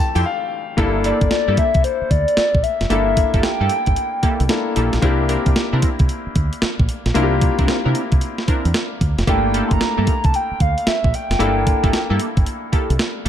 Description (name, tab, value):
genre	R&B, new jack swing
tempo	113 BPM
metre	4/4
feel	swing 65% on 16ths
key	G dorian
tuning	A4 = 440 Hz
part	hollow clarinet-like synth lead	melody	0.0-4.5, 9.3-12.2 s	C5 to C6	-21 LUFS	left 1 dB	chorus, phaser, tape echo
part	clear baby grand piano	accompaniment	0.0-13.3 s	E3 to A5	-24 LUFS	left 5 dB	none
part	funky polysynth comp	stabs	0.2-13.3 s	Bb3 to Bb4	-25 LUFS	right 2 dB	chorus
part	deep dub fingered electric bass	bass	0.2-13.3 s	F1 to C3	-20 LUFS	equal	none
part	clean 12-bit digital drum machine	drums	0.2-13.3 s	hi-hat, kick drum, snare drum	-19 LUFS	right 1 dB	none
room	light reverb, digital ambience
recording	dark, warm production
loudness	-16 LUFS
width	side -10 dB against mid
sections	0.8-13.3 A section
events	grand piano fill 0.0-0.8; break 0.2-0.8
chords	0.0 Fmaj9; 0.8 Gm69; 5.0 C9; 9.3 Gm69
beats	0.25 | 0.78 1.31 1.84 2.37 | 2.90 3.44 3.97 4.50 | 5.03 5.56 6.09 6.62 | 7.15 7.68 8.21 8.74 | 9.28 9.81 10.34 10.87 | 11.40 11.93 12.46 12.99